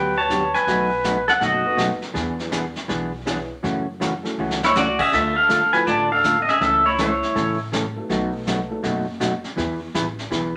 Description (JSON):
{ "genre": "country, western swing", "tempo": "162 BPM", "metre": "4/4", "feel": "swing 64% on 8ths", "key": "unclear", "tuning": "A4 = 441 Hz", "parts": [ { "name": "pedal steel guitar", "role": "melody", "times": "0.0-1.8, 4.6-7.6 s", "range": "E4 to A5", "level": "-20 LUFS", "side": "equal", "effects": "none" }, { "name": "hollow-body jazz guitar", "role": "accompaniment", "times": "0.0-10.5 s", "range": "B2 to B4", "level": "-27 LUFS", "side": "equal", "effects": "none" }, { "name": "upright bass", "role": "bass", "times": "0.0-10.6 s", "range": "F#1 to A2", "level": "-36 LUFS", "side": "equal", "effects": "none" }, { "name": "dark upright piano", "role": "accompaniment", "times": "0.2-8.8 s", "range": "F3 to C#5", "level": "-33 LUFS", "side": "equal", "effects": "none" }, { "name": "vintage brush drum kit", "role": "drums", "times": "0.3-10.6 s", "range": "brushed snare drum, crash cymbal, hi-hat, kick drum, snare drum", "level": "-32 LUFS", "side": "equal", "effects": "none" }, { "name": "growling clarinet", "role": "second line", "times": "4.7-7.6 s", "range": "A3 to F4", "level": "-33 LUFS", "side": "equal", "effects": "none" } ], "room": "wet studio reverb, RT60 0.5 s", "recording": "none", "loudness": "-21 LUFS", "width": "mono", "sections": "0.0-10.6 A section", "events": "drum fill 4.4-4.8", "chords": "0.0 Gmaj7; 0.7 B7; 2.2 E7; 3.6 F#m7; 5.1 Dm; 6.6 A/C#; 8.1 B7; 9.6 E" }